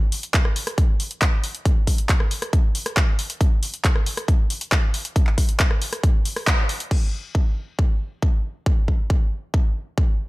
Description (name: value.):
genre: trance.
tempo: 137 BPM.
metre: 4/4.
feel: straight.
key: none.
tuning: none.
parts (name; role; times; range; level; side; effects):
punchy analog drum machine; drums; 0.1-7.0 s; crash cymbal, handclaps, hi-hat, rim click; -24 LUFS; equal; none.
electronic kick drum; drums; 0.3-10.1 s; none; -19 LUFS; equal; none.
room: digital ambience.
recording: none.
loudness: -19 LUFS.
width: side -21 dB against mid.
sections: 0.0-6.9 A section; 6.9-10.3 B section.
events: band accent 6.5.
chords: none.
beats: 0.34 0.78 1.22 | 1.66 2.09 2.53 2.97 | 3.41 3.85 4.28 4.72 | 5.16 5.60 6.04 6.47 | 6.91 7.35 7.79 8.22 | 8.66 9.10 9.54 9.98.